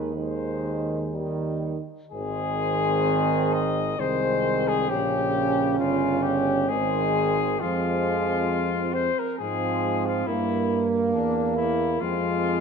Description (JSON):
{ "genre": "classical, hymn-like piece for brass band", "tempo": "66 BPM", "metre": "3/4", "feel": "uneven beats, rubato", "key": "Ab major", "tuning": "A4 = 440 Hz", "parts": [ { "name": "warm French horn section", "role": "second line", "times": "0.0-12.6 s", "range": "Bb3 to Eb4", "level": "-29 LUFS", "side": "right 10 dB", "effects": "none" }, { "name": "clear euphonium", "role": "accompaniment", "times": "0.0-12.6 s", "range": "G3 to Db4", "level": "-30 LUFS", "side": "equal", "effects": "none" }, { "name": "clear trombone", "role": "accompaniment", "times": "0.0-12.6 s", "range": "Db3 to Bb3", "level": "-31 LUFS", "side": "right 3 dB", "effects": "none" }, { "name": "warm tuba", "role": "bass", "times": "0.0-12.6 s", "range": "G1 to Ab2", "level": "-31 LUFS", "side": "equal", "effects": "none" }, { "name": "warm flugelhorn", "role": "melody", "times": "0.2-12.6 s", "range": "D4 to Eb5", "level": "-27 LUFS", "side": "left 8 dB", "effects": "none" } ], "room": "moderate scoring stage reverb, RT60 1.9 s", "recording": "none", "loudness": "-22 LUFS", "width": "side -6 dB against mid", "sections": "0.0-2.1 A section; 2.1-12.6 B section", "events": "none", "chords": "0.0 Ab/Eb; 1.1 Eb; 2.1 Ab; 4.9 Gdim/Bb; 6.7 Ab; 7.6 Fm; 10.3 Edim/G; 12.0 Fm" }